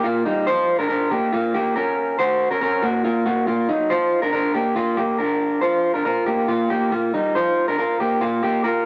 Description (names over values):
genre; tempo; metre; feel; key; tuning
indie pop; 140 BPM; 4/4; straight; Bb major; A4 = 437 Hz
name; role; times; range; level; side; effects
electric guitar through a small old amp; solo; 0.0-8.9 s; Gb3 to C5; -21 LUFS; equal; cassette tape
room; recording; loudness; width
moderate lush hall reverb, RT60 2.6 s; home recording on cassette; -21 LUFS; mono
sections
0.0-5.6 A section; 5.6-8.9 B section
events
none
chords
0.0 Bb; 2.0 Gb; 3.9 Bbadd9; 5.6 Bbsus2